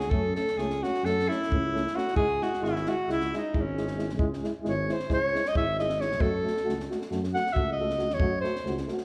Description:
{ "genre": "balkan folk, Balkan brass band", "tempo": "268 BPM (eighths)", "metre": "9/8", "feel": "straight", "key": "F# dorian sharp4", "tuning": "A4 = 439 Hz", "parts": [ { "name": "clear alto saxophone", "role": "second line", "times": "0.0-8.8 s", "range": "C#4 to F#5", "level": "-31 LUFS", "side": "equal", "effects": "none" }, { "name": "dark tuba", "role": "bass", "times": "0.0-8.9 s", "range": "G#1 to F#2", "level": "-36 LUFS", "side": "equal", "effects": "none" }, { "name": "compact cocktail drum kit", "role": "percussion", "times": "0.0-9.0 s", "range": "kick drum, snare drum", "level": "-35 LUFS", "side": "equal", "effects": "none" }, { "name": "mellow trombone", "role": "accompaniment", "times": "0.1-9.0 s", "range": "G#3 to A3", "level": "-38 LUFS", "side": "equal", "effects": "none" }, { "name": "warm euphonium", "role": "accompaniment", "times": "0.1-9.0 s", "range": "C#4 to F#4", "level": "-38 LUFS", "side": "equal", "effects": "none" } ], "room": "moderate recital hall reverb, RT60 1.7 s", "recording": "recorded in a church or concert hall", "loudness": "-28 LUFS", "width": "mono", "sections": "0.0-9.0 A section", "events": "alto saxophone solo 0.0-9.0", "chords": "0.0 F#m; 2.2 C#m; 6.2 F#m" }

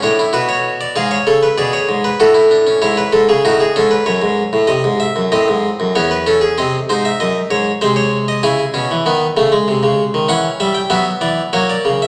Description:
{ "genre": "classical, baroque-style 3-part fugue for harpsichord", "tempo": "97 BPM", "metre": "3/4", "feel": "straight", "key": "unclear", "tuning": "A4 = 439 Hz", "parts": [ { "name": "harpsichord", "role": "solo", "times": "0.0-12.1 s", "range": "E2 to G#5", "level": "-15 LUFS", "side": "equal", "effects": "none" } ], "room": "wet recital hall reverb, RT60 1.4 s", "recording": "none", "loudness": "-15 LUFS", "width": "mono", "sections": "0.0-6.6 A section; 6.6-12.1 B section", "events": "none", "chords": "0.4 Bmadd9; 1.0 Fdim7/Ab (rootless); 2.2 F#m/A; 2.8 C#m/G#; 4.1 F#madd9; 4.7 Cdim; 5.9 C#m/E; 6.6 G#; 7.8 G#/B#; 8.4 C#m; 9.7 G#/B#; 10.3 C#dim/E; 10.9 Bm/F#; 11.5 F#" }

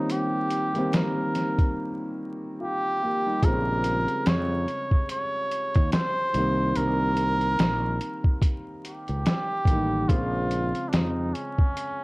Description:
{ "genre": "lo-fi hip hop", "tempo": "72 BPM", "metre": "4/4", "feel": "swing 59% on 16ths", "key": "unclear", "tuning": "A4 = 441 Hz", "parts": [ { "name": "trumpet with cup mute", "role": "melody", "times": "0.0-12.0 s", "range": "Db4 to Db5", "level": "-28 LUFS", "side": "right 1 dB", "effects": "none" }, { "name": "dark upright piano", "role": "accompaniment", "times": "0.0-12.0 s", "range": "Db3 to G4", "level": "-29 LUFS", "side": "equal", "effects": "cassette tape" }, { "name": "lo-fi sampler-style drum kit", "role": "drums", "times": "0.1-12.0 s", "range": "hi-hat, kick drum, snare drum", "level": "-24 LUFS", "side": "equal", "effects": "none" }, { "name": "fretless electric bass", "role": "bass", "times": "3.4-11.3 s", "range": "A1 to F2", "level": "-28 LUFS", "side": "equal", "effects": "none" } ], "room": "moderate studio reverb, RT60 0.6 s", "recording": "worn, warbling old tape, cassette tape, vinyl crackle, warbly pitch drift", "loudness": "-23 LUFS", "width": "side -24 dB against mid", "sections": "0.0-12.0 A section", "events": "break 0.0-3.4", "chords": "0.0 Cm7; 3.4 Bbm7; 6.3 Cm7; 10.1 Bbm7" }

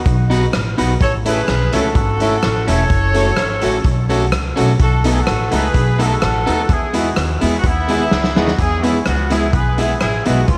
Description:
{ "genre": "ska", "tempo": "127 BPM", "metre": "4/4", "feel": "straight", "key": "E major", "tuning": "A4 = 440 Hz", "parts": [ { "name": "warm horn section", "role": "melody", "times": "0.0-10.6 s", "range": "B3 to C#5", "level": "-23 LUFS", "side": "equal", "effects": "analog delay" }, { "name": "upright bass", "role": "bass", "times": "0.0-10.6 s", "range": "E1 to E2", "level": "-21 LUFS", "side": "equal", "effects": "none" }, { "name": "warm upright piano", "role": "stabs", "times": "0.1-10.4 s", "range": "G#3 to F#4", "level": "-24 LUFS", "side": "equal", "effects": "none" }, { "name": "raw garage drum kit", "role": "drums", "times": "0.1-10.6 s", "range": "hi-hat, kick drum, rim click, snare drum", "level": "-22 LUFS", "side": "equal", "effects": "none" }, { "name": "electric guitar at the edge of break-up", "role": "accompaniment", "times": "0.3-10.4 s", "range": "B3 to B4", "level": "-26 LUFS", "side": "equal", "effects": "spring reverb" } ], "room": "light reverb, small room ambience", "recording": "vinyl crackle", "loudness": "-16 LUFS", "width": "mono", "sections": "0.0-8.6 A section; 8.6-10.6 B section", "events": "drum fill 8.1-8.6", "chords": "0.0 B; 1.0 A; 2.9 F#m; 4.8 B7; 6.7 E" }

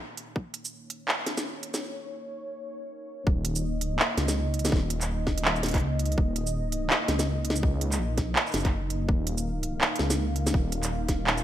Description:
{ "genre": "half-time drum and bass", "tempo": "165 BPM", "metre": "4/4", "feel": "swing 60% on 16ths, half-time", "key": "unclear", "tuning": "A4 = 440 Hz", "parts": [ { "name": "dark analog pad", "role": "sustained chords", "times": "0.0-11.4 s", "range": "Bb3 to F5", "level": "-35 LUFS", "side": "equal", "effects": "chorus, sidechain pumping" }, { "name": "industrial drum kit", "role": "drums", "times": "0.2-11.4 s", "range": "handclaps, hi-hat, shaker, snare drum", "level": "-28 LUFS", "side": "right 1 dB", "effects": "gated reverb" }, { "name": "electronic kick drum", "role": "drums", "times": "0.4, 3.3-11.2 s", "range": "none", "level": "-26 LUFS", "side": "equal", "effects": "overdrive" }, { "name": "dark detuned saw bass", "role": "bass", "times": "3.3-11.4 s", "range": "Eb1 to Db2", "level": "-29 LUFS", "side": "equal", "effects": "none" } ], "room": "light reverb, digital ambience", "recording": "bright 1980s-style digital production, high-pass filter", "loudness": "-25 LUFS", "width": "side -12 dB against mid", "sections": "0.0-3.3 A section; 3.3-11.4 B section", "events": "build-up 0.0-3.3; filter sweep on analog synth pad 0.0-3.3; filter sweep 0.0-3.3; break 1.8-3.3; drop 3.3-11.4", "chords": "0.0 Eb5" }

